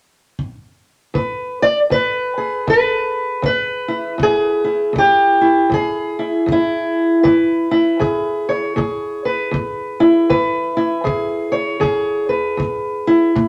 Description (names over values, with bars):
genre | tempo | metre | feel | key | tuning
acoustic country blues, solo or duo | 78 BPM | 4/4 | swing 62% on 8ths | E major | A4 = 444 Hz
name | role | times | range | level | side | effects
kick drum | drums | 0.4-13.5 s | none | -27 LUFS | equal | none
fingerpicked steel-string acoustic guitar | melody | 1.1-13.5 s | E2 to D5 | -17 LUFS | equal | none
room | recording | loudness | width
moderate studio reverb, RT60 0.8 s | none | -17 LUFS | mono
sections
0.0-1.1 A section; 1.1-13.5 B section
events
none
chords
0.0 N.C.; 1.1 E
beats
0.38 | 1.15 1.91 2.67 3.43 | 4.20 4.96 5.72 6.49 | 7.25 8.02 8.78 9.54 | 10.31 11.07 11.84 12.60 | 13.37